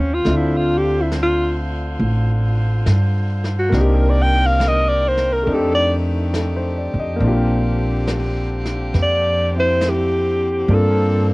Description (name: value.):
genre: jazz ballad.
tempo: 69 BPM.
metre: 4/4.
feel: swing 69% on 8ths.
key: unclear.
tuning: A4 = 440 Hz.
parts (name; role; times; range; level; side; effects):
mellow alto saxophone; melody; 0.0-11.3 s; Db4 to G5; -18 LUFS; equal; cassette tape.
warm concert grand piano; accompaniment; 0.0-11.3 s; A3 to E5; -23 LUFS; left 1 dB; cassette tape.
edgy saxophone section; sustained chords; 0.0-11.3 s; D3 to C5; -30 LUFS; equal; cassette tape.
upright bass; bass; 0.0-11.3 s; A1 to G2; -18 LUFS; equal; none.
jazz brush drum kit; drums; 0.2-11.3 s; brushed snare drum, hi-hat, snare drum; -31 LUFS; equal; cassette tape.
room: little or no reverb.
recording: home recording on cassette.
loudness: -16 LUFS.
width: side -23 dB against mid.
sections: 0.0-11.3 A section.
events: alto saxophone solo 0.0-11.3.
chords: 0.3 Dm7; 3.7 Cm7; 5.5 F13; 7.2 Bb69; 10.7 Gm11.